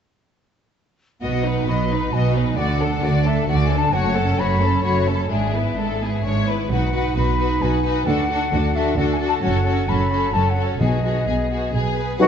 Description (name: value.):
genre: cinematic.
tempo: 131 BPM.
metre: 3/4.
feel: straight.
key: unclear.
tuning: A4 = 440 Hz.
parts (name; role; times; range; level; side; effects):
warm symphonic violin section; melody; 1.2-12.2 s; G#4 to D#5; -27 LUFS; left 6 dB; none.
mellow concert flute; second line; 1.2-11.7 s; C#5 to B5; -25 LUFS; left 3 dB; none.
rich symphonic violin section; second line; 1.2-12.3 s; D4 to F#5; -28 LUFS; left 4 dB; none.
rich chamber viola section; accompaniment; 1.2-12.3 s; G#3 to F#4; -27 LUFS; right 2 dB; none.
rich symphonic cello section; bass; 1.2-12.3 s; F#2 to D3; -24 LUFS; right 2 dB; none.
rich symphonic double bass section; bass; 1.2-12.3 s; F#1 to D2; -23 LUFS; right 2 dB; none.
timpani; percussion; 10.8-11.5 s; B2; -24 LUFS; left 1 dB; none.
bright clarinet; second line; 12.2-12.3 s; F#4; -16 LUFS; left 2 dB; none.
clear trombone section; sustained chords; 12.2-12.3 s; D#3 to F#3; -16 LUFS; right 4 dB; none.
dark French horn section; sustained chords; 12.2-12.3 s; B3 to F#4; -17 LUFS; left 7 dB; none.
room: moderate scoring stage reverb, RT60 1.6 s.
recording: dark, warm production, nothing above 8.0 kHz.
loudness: -18 LUFS.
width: side -8 dB against mid.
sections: 1.2-12.2 A section.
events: none.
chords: 1.2 B; 2.6 D; 4.0 F#m; 5.3 E7/G#; 6.7 B; 8.1 D; 9.4 F#m; 10.8 B6.